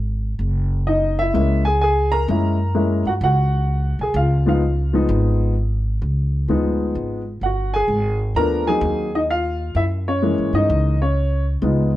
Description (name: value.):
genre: jazz piano trio.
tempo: 128 BPM.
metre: 4/4.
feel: swing 66% on 8ths.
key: unclear.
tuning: A4 = 440 Hz.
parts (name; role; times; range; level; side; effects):
upright bass; bass; 0.0-12.0 s; Gb1 to Ab2; -20 LUFS; equal; none.
warm baby grand piano; melody; 0.9-11.9 s; Fb3 to Bb5; -20 LUFS; left 1 dB; plate reverb.
room: moderate club reverb, RT60 0.8 s.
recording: dark, warm production.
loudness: -17 LUFS.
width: side -15 dB against mid.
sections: 0.0-12.0 A section.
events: none.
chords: 0.4 Gb9; 4.1 Db9; 7.9 Ab9; 9.8 Gb9.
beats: | 0.41 0.87 1.34 1.81 | 2.28 2.75 3.21 3.68 | 4.15 4.62 5.08 5.55 | 6.02 6.49 6.95 7.42 | 7.89 8.35 8.82 9.29 | 9.75 10.22 10.69 11.15 | 11.62.